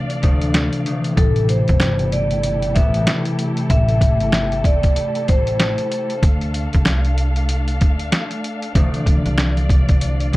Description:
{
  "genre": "hip hop, boom-bap hip-hop",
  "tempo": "95 BPM",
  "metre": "4/4",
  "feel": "swing 59% on 16ths",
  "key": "A minor",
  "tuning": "A4 = 440 Hz",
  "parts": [
    { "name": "concert harp", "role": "accompaniment", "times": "0.0-10.4 s", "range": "D2 to B3", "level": "-23 LUFS", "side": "left 1 dB", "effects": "cassette tape, high-pass filter, low-pass filter" },
    { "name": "warm studio string section", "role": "sustained chords", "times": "0.0-10.4 s", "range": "A3 to F5", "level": "-28 LUFS", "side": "left 1 dB", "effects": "high-pass filter, low-pass filter" },
    { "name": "trip hop sampler-style drum kit", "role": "drums", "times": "0.1-10.4 s", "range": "hi-hat, kick drum, snare drum", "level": "-17 LUFS", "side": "equal", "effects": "none" },
    { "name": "upright bass", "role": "bass", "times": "0.2-10.4 s", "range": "G1 to D2", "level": "-20 LUFS", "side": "equal", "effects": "none" },
    { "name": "vibraphone with hard mallets", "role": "melody", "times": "1.2-6.2 s", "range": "A4 to E5", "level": "-22 LUFS", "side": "left 1 dB", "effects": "high-pass filter, low-pass filter, plate reverb" }
  ],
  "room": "light reverb",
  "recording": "dark, warm production",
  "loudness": "-15 LUFS",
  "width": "side -19 dB against mid",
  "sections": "0.0-10.4 A section",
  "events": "none",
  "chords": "0.0 Dm7; 1.2 Am7; 6.2 Dm7"
}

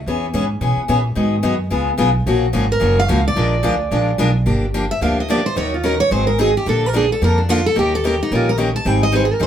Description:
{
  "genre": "acoustic string swing (jazz manouche)",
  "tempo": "218 BPM",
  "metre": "4/4",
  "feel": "swing 57% on 8ths",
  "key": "G minor from 4.5 s",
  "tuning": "A4 = 441 Hz",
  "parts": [
    { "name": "upright bass", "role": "bass", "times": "0.0-9.5 s", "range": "Gb1 to B2", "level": "-19 LUFS", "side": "right 1 dB", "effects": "none" },
    { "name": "picked steel-string acoustic guitar", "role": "accompaniment", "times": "0.1-9.5 s", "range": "Db3 to Bb4", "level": "-19 LUFS", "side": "left 3 dB", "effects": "none" },
    { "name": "picked steel-string acoustic guitar", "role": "melody", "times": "2.7-9.5 s", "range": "D4 to A5", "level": "-18 LUFS", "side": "right 2 dB", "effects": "none" }
  ],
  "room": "moderate studio reverb, RT60 0.5 s",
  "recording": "band playing live in one room",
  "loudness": "-15 LUFS",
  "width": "side -9 dB against mid",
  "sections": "0.0-4.5 A section; 4.5-9.5 B section",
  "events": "steel-string acoustic guitar solo 4.5-9.5",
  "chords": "0.1 E6; 1.2 Abm7; 1.7 Db7; 2.3 Gbmaj7; 3.4 Bb7b9; 4.5 Gm7; 5.6 Ebm7; 6.1 Ab7; 6.7 Bbmaj7; 7.8 Eb7; 8.9 Abmaj7"
}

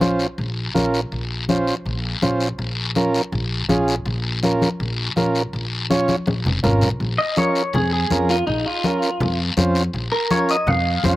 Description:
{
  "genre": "latin, cumbia",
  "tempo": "163 BPM",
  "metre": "4/4",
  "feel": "straight",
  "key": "Bb minor",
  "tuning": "A4 = 440 Hz",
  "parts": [
    { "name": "combo organ", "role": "accompaniment", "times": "0.0-11.2 s", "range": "Db4 to Db5", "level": "-21 LUFS", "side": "right 2 dB", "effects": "slapback echo" },
    { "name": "upright bass", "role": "bass", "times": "0.0-11.2 s", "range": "F1 to F2", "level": "-23 LUFS", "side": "equal", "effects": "none" },
    { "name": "congas", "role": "percussion", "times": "0.0-11.2 s", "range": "none", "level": "-23 LUFS", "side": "left 2 dB", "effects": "none" },
    { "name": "guiro", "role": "percussion", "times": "0.0-11.2 s", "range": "none", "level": "-28 LUFS", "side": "left 4 dB", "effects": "none" },
    { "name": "clean electric guitar", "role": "melody", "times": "7.2-11.2 s", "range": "Eb4 to F5", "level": "-21 LUFS", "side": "equal", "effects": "spring reverb" }
  ],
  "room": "little or no reverb",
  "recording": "recorded outdoors, with no room sound",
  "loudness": "-18 LUFS",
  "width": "side -16 dB against mid",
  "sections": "0.0-7.0 A section; 7.0-11.2 B section",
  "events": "drum fill 6.1-7.0; clean electric guitar solo 7.0-11.2",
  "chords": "0.0 Bbm"
}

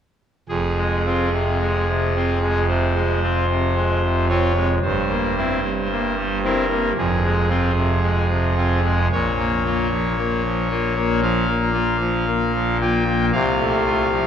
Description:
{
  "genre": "classical, chorale-style piece for pipe organ",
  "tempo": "56 BPM",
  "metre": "4/4",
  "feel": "rubato",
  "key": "F minor",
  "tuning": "A4 = 440 Hz",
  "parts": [
    { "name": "pipe organ, trumpet", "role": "solo", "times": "0.5-14.3 s", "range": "F1 to G5", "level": "-18 LUFS", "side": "equal", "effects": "none" }
  ],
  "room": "wet church reverb, RT60 3.4 s",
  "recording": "worn, warbling old tape, cassette tape, warbly pitch drift",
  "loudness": "-18 LUFS",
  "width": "side -8 dB against mid",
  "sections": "0.5-14.3 A section",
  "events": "none",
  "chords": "0.5 Fm; 4.8 C7/G; 7.0 Fm; 9.1 Bbm; 13.3 F/C"
}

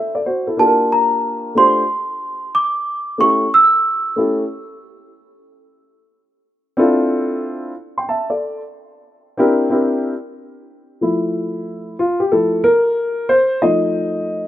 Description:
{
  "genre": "hip hop",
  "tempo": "92 BPM",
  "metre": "4/4",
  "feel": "swing 65% on 16ths",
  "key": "F major",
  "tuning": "A4 = 441 Hz",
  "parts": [
    { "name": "dark upright piano", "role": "accompaniment", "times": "0.0-14.5 s", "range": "F3 to C6", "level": "-16 LUFS", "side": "left 1 dB", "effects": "none" },
    { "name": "celesta", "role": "melody", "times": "0.6-4.1 s", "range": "A5 to E6", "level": "-14 LUFS", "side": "right 1 dB", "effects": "slapback echo" }
  ],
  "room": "light reverb",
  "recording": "rough home demo mix",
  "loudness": "-15 LUFS",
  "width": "side -12 dB against mid",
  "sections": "0.0-11.0 A section; 11.0-14.5 B section",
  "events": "upright piano solo 11.0-14.5",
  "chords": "0.0 D7; 0.6 Gm7; 3.2 A7; 5.8 Dm7; 8.4 C7; 11.0 Fmaj7; 13.6 F7"
}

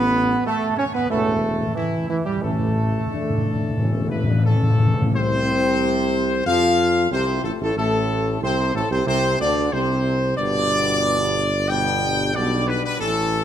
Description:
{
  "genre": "classical, ceremonial fanfare",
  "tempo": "92 BPM",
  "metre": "4/4",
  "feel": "straight",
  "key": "unclear",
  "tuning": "A4 = 439 Hz",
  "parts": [
    { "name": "bright trumpet section", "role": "melody", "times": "0.0-13.4 s", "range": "E4 to G5", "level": "-23 LUFS", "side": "left 1 dB", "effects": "none" },
    { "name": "clear trombone section", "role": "sustained chords", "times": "0.0-13.4 s", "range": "A2 to C#4", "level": "-25 LUFS", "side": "right 2 dB", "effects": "none" },
    { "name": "mellow French horn section", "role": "sustained chords", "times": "0.0-13.4 s", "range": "A3 to B4", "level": "-26 LUFS", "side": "left 4 dB", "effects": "none" },
    { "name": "mellow tuba", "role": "bass", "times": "0.0-13.4 s", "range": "E1 to F2", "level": "-25 LUFS", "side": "right 2 dB", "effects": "none" },
    { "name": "timpani", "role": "percussion", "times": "0.0-5.1 s", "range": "A2", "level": "-22 LUFS", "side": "left 1 dB", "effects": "none" }
  ],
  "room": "moderate concert hall reverb, RT60 2.0 s",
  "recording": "none",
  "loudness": "-18 LUFS",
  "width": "side -10 dB against mid",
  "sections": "0.0-5.1 A section; 5.1-13.4 B section",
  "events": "timpani fill 0.0-5.1",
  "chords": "0.0 Aadd9; 5.1 F; 10.4 G"
}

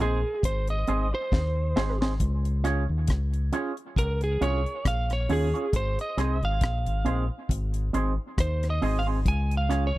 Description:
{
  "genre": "roots reggae",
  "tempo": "68 BPM",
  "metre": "4/4",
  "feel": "swing 56% on 16ths",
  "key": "Db major",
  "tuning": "A4 = 440 Hz",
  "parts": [
    { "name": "lightly driven lead guitar", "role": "melody", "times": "0.0-10.0 s", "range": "Ab4 to Ab5", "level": "-30 LUFS", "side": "right 2 dB", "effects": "tape echo" },
    { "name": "electric guitar with an envelope filter", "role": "accompaniment", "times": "0.0-9.9 s", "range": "C4 to Db5", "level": "-31 LUFS", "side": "right 3 dB", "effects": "tape echo" },
    { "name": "deep dub fingered electric bass", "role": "bass", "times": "0.0-10.0 s", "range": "Ab1 to Eb2", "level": "-26 LUFS", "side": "equal", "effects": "none" },
    { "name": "deep reggae drum kit", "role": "drums", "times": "0.4-9.9 s", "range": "hi-hat, kick drum, rim click, snare drum", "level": "-28 LUFS", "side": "left 1 dB", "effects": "none" }
  ],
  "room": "small room ambience",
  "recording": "dry, close 1970s-style studio recording",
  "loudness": "-24 LUFS",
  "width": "side -17 dB against mid",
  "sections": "0.0-10.0 A section",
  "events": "lead electric guitar solo 0.0-10.0; drum fill 1.3-2.2",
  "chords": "0.0 Ab; 2.2 Db; 5.7 Ab; 9.3 Db"
}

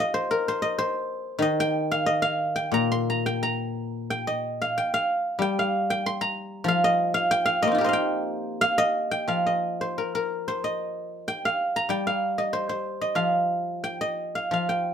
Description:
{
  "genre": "chinese traditional, Chinese solo plucked strings",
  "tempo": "86-96 BPM",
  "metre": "2/4",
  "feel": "rubato",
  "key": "unclear",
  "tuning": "A4 = 440 Hz",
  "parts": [
    { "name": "guzheng", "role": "solo", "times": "0.0-14.9 s", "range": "Bb2 to C6", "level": "-23 LUFS", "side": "equal", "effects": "none" }
  ],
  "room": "moderate studio reverb, RT60 0.5 s",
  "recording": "band playing live in one room",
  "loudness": "-23 LUFS",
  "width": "side -8 dB against mid",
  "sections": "0.0-9.3 A section; 9.3-14.9 B section",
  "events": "none",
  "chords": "none"
}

